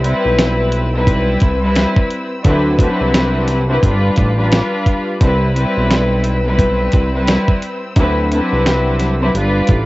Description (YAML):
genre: hip hop, boom-bap hip-hop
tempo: 87 BPM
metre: 4/4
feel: swing 62% on 16ths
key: C major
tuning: A4 = 439 Hz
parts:
  - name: warm studio string section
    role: accompaniment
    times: 0.0-9.9 s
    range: F#3 to B4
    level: -16 LUFS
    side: left 1 dB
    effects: cassette tape, high-pass filter, low-pass filter
  - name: rich studio string section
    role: sustained chords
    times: 0.0-9.9 s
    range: C4 to E6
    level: -30 LUFS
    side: right 1 dB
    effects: high-pass filter, low-pass filter, cassette tape
  - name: fat analog bass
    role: bass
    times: 0.0-9.9 s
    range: G1 to D2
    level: -17 LUFS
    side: equal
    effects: none
  - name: dusty soul sampler-style drum kit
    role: drums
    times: 0.0-9.9 s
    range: hi-hat, kick drum, snare drum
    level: -15 LUFS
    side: equal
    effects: cassette tape
room: light reverb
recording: home recording on cassette, nothing above 7.8 kHz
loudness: -12 LUFS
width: side -19 dB against mid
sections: 0.0-9.9 A section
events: none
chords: 0.0 Cmaj7; 2.4 D13; 3.8 G7; 5.2 Cmaj7; 8.0 D13; 9.3 G7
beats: 0.38 1.07 1.76 | 2.45 3.14 3.83 4.52 | 5.21 5.90 6.59 7.28 | 7.97 8.65 9.35